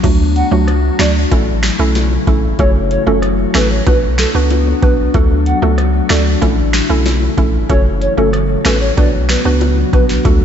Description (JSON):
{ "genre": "dancehall", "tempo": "94 BPM", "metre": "4/4", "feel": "straight", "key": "D major", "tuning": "A4 = 440 Hz", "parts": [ { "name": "mallet-like synth pluck", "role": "accompaniment", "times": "0.0-10.4 s", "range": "F#3 to B4", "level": "-19 LUFS", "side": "right 5 dB", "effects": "chorus" }, { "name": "glassy FM pad", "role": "sustained chords", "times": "0.0-10.4 s", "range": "C#3 to F#4", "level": "-19 LUFS", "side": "left 4 dB", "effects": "ensemble chorus, built-in reverb, sidechain pumping" }, { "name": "punchy sub bass", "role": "bass", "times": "0.0-10.4 s", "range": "F#1 to D2", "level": "-16 LUFS", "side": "equal", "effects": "none" }, { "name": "booming analog drum machine", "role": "drums", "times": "0.0-10.4 s", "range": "crash cymbal, finger snaps, hi-hat, kick drum, rim click, snare drum", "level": "-16 LUFS", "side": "equal", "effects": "none" }, { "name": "bongos", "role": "percussion", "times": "0.0-10.4 s", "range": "none", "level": "-26 LUFS", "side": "left 8 dB", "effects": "none" }, { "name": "hollow clarinet-like synth lead", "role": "melody", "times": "0.4-10.0 s", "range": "A4 to F#5", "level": "-20 LUFS", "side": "equal", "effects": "chorus, ping-pong delay" } ], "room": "light reverb", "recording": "nothing above 7.8 kHz", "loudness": "-11 LUFS", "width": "side -8 dB against mid", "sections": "0.0-10.4 A section", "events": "none", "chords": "0.0 D; 1.3 A; 2.6 F#m; 3.9 Bm; 5.1 D; 6.4 A; 7.7 F#m; 9.0 Bm" }